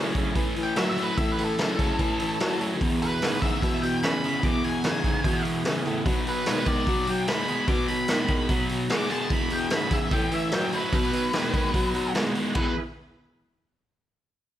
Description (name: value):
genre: blues rock power trio and southern rock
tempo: 148 BPM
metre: 4/4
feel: straight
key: E major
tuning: A4 = 440 Hz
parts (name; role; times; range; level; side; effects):
- tonewheel organ; sustained chords; 0.0-12.8 s; B3 to B4; -38 LUFS; right 3 dB; none
- crunchy overdriven guitar; riff; 0.0-12.7 s; E2 to G#3; -28 LUFS; left 1 dB; none
- dark baritone saxophone; bass; 0.0-12.7 s; E2 to G#3; -31 LUFS; equal; none
- raw garage drum kit; drums; 0.1-12.7 s; crash cymbal, hi-hat, kick drum, snare drum; -27 LUFS; equal; none
- octave-fuzz lead guitar; melody; 0.6-12.7 s; A4 to D6; -30 LUFS; equal; distortion, slapback echo
room: light reverb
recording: none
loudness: -23 LUFS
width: side -12 dB against mid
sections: 0.0-12.6 A section; 12.6-14.2 B section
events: none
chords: 0.0 A; 2.8 E; 6.1 B; 9.3 E; 10.1 A; 10.9 B; 12.6 E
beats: 0.36 0.77 | 1.17 1.58 1.99 2.40 | 2.80 3.21 3.62 4.02 | 4.43 4.84 5.24 5.65 | 6.06 6.46 6.87 7.28 | 7.68 8.09 8.50 8.90 | 9.31 9.72 10.12 10.53 | 10.94 11.34 11.75 12.15 | 12.56